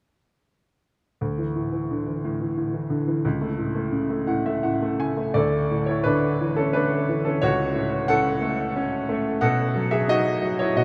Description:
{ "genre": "classical, lyrical solo piano", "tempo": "88 BPM", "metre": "3/4", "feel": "uneven beats, rubato", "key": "D major", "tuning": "A4 = 440 Hz", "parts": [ { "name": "bright baby grand piano", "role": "solo", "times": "1.2-10.8 s", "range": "C#2 to G#5", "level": "-24 LUFS", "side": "equal", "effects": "none" } ], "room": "wet huge ambient reverb, RT60 7.3 s", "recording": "in a vast, echoing space", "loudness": "-24 LUFS", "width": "mono", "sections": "1.2-5.4 A section; 5.4-10.8 B section", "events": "grand piano fill 3.9-5.4", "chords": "1.2 Dsus2; 3.3 F#m9/C#; 5.4 Dsus2; 7.4 F#m/C#; 9.4 B7" }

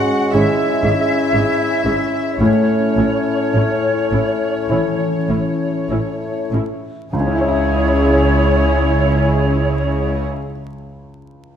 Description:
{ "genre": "cinematic", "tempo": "48-62 BPM", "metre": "4/4", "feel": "rubato", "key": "C# minor", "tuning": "A4 = 440 Hz", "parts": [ { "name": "warm symphonic violin section", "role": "melody", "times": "0.0-10.2 s", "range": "G#4 to F#5", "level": "-28 LUFS", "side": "left 2 dB", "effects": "none" }, { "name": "bright clarinet", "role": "second line", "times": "0.0-10.2 s", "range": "C#4 to G#4", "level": "-26 LUFS", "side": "left 3 dB", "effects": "none" }, { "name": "small flute group", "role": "second line", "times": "0.0-10.2 s", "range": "C#5 to F#5", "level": "-22 LUFS", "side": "right 1 dB", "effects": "none" }, { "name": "warm symphonic violin section", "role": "second line", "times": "0.0-10.2 s", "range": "C#5 to F#5", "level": "-29 LUFS", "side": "left 2 dB", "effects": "none" }, { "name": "clear concert grand piano", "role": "accompaniment", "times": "0.0-11.6 s", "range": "C#2 to E5", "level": "-23 LUFS", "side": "equal", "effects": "none" }, { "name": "mellow French horn section", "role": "sustained chords", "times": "0.0-10.2 s", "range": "G#3 to E4", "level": "-22 LUFS", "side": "left 2 dB", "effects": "none" }, { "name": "concert harp", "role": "arpeggios", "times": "0.0-11.0 s", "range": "G#2 to E5", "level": "-27 LUFS", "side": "left 4 dB", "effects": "none" }, { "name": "dark symphonic viola section", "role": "accompaniment", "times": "0.3-10.3 s", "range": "C#4 to G#4", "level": "-24 LUFS", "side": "right 1 dB", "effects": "none" }, { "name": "rich symphonic cello section", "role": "bass", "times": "0.3-10.2 s", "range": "G#2 to C#3", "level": "-23 LUFS", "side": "right 2 dB", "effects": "none" }, { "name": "warm symphonic double bass section", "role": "bass", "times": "0.3-10.2 s", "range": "G#1 to C#2", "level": "-21 LUFS", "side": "right 1 dB", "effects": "none" } ], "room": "moderate scoring stage reverb, RT60 1.5 s", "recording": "vinyl crackle", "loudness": "-14 LUFS", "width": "side -8 dB against mid", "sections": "0.0-7.1 A section; 7.1-11.6 B section", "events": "slowing down 0.0-7.1", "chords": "0.0 C#m/G#; 2.4 A; 7.1 C#m" }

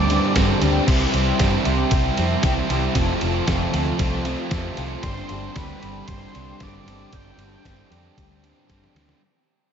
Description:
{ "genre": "rock, shoegaze and dream pop", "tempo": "115 BPM", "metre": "4/4", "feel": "straight", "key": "unclear", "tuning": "A4 = 438 Hz", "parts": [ { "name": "octave-fuzz lead guitar", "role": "melody", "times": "0.0-0.3, 5.0-7.9 s", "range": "B4 to G5", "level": "-33 LUFS", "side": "right 1 dB", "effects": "distortion, slapback echo" }, { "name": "direct-recorded clean electric guitar", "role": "arpeggios", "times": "0.0-9.2 s", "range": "E3 to A4", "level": "-34 LUFS", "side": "left 12 dB", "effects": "lush chorus, slapback echo" }, { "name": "biting overdriven guitar", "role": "riff", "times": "0.0-9.2 s", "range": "F2 to E4", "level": "-26 LUFS", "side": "right 11 dB", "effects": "reverse reverb" }, { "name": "crunchy overdriven guitar", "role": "riff", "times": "0.0-9.2 s", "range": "F2 to C4", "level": "-30 LUFS", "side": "right 1 dB", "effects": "none" }, { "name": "overdriven semi-hollow guitar", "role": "riff", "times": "0.0-9.2 s", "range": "G2 to A4", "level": "-28 LUFS", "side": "left 10 dB", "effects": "ensemble chorus" }, { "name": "vintage muted fingered electric bass", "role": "bass", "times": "0.0-9.1 s", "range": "F1 to G2", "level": "-25 LUFS", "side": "equal", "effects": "none" }, { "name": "detuned 8-bit digital drum machine", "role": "drums", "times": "0.1-9.2 s", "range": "crash cymbal, kick drum, ride cymbal, snare drum", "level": "-24 LUFS", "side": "equal", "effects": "none" }, { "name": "tambourine", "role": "percussion", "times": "0.4-8.8 s", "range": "none", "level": "-40 LUFS", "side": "left 14 dB", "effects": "none" } ], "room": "light reverb", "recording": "nothing above 7.6 kHz", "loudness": "-18 LUFS", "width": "side -8 dB against mid", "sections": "0.0-9.2 A section", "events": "fade-out 0.0-9.2; drum fill 8.7-9.2", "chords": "0.0 Gsus4; 0.9 Cadd9; 3.0 F; 5.0 Gsus4" }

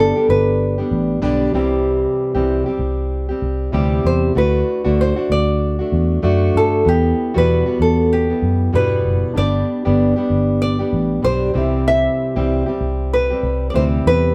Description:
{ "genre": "acoustic pop", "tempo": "96 BPM", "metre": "4/4", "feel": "swing 60% on 16ths", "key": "G major", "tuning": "A4 = 440 Hz", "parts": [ { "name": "nylon-string guitar", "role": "melody", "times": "0.0-14.3 s", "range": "G4 to E5", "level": "-21 LUFS", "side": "equal", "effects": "none" }, { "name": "fingerpicked plugged-in steel-string acoustic guitar", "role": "accompaniment", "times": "0.0-14.3 s", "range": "E2 to G4", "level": "-22 LUFS", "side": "equal", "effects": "none" }, { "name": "vintage muted fingered electric bass", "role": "bass", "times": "0.0-14.3 s", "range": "F#1 to G2", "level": "-21 LUFS", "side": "equal", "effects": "none" }, { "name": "warm upright piano", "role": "accompaniment", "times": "9.3-14.3 s", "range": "C4 to E5", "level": "-32 LUFS", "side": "equal", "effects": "none" } ], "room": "moderate studio reverb, RT60 0.6 s", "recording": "band playing live in one room", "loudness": "-17 LUFS", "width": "mono", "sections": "0.0-14.3 A section", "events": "none", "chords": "0.0 G; 1.5 C; 4.4 D; 6.9 Emadd9; 9.4 G; 11.6 C" }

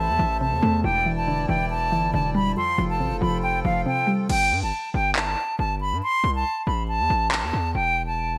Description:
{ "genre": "hip hop, drill", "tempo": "139 BPM", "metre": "4/4", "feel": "half-time", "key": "A minor", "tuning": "A4 = 440 Hz", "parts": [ { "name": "silver concert flute", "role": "melody", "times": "0.0-8.4 s", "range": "F5 to C6", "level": "-26 LUFS", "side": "equal", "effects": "none" }, { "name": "mallet-like synth pluck", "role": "accompaniment", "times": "0.0-4.3 s", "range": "E2 to A3", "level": "-28 LUFS", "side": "equal", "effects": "chorus" }, { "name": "accordion", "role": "sustained chords", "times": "0.0-4.3 s", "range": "E3 to G5", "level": "-35 LUFS", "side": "equal", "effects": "none" }, { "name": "distorted 808-style bass", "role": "bass", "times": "0.0-8.4 s", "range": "E1 to G2", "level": "-29 LUFS", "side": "equal", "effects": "distortion" }, { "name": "drill drum kit", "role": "drums", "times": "4.3-7.4 s", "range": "crash cymbal, handclaps", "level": "-30 LUFS", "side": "equal", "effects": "gated reverb" } ], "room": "moderate plate reverb, RT60 2.0 s, digital ambience", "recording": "bright 1980s-style digital production", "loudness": "-23 LUFS", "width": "mono", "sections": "0.0-4.3 A section; 4.3-8.4 B section", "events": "hi-hats muted 4.3-8.4", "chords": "0.0 Am; 0.8 Em7; 2.6 Fadd9; 4.3 Gsus2; 6.0 A5; 7.7 Em" }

